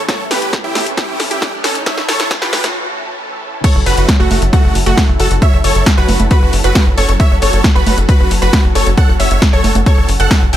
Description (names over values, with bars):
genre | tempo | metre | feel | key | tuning
uplifting trance | 135 BPM | 4/4 | straight | unclear | A4 = 440 Hz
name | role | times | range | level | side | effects
analog string pad | sustained chords | 0.0-10.6 s | A2 to A4 | -23 LUFS | equal | ensemble chorus, sidechain pumping
riser | sound effects | 0.0-2.8 s | none | -27 LUFS | equal | none
dense compressed supersaw | melody | 0.1-10.6 s | A3 to G5 | -18 LUFS | right 2 dB | sidechain pumping, digital delay
electronic kick drum | drums | 0.1-10.4 s | none | -12 LUFS | equal | overdrive
punchy analog drum machine | drums | 0.1-10.6 s | congas, crash cymbal, hi-hat, snare drum | -18 LUFS | equal | overdrive
analog pluck | second line | 3.6-10.6 s | F#4 to G5 | -21 LUFS | equal | chorus, sidechain pumping, digital delay
tight sequencer bass | bass | 3.8-10.6 s | F#1 | -14 LUFS | equal | sidechain pumping
room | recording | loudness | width
little or no reverb | high-pass filter | -10 LUFS | side -12 dB against mid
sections
0.0-3.6 A section; 3.6-10.6 B section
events
build-up 0.0-3.6; drum fill 0.0-2.8; riser 0.0-2.8; break 2.8-3.6; drop 3.6-10.6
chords
0.0 A; 3.6 F#m7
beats
| 0.09 0.53 0.97 1.42 | 1.86 2.31 2.75 3.20 | 3.64 4.09 4.53 4.97 | 5.42 5.86 6.31 6.75 | 7.20 7.64 8.09 8.53 | 8.97 9.42 9.86 10.31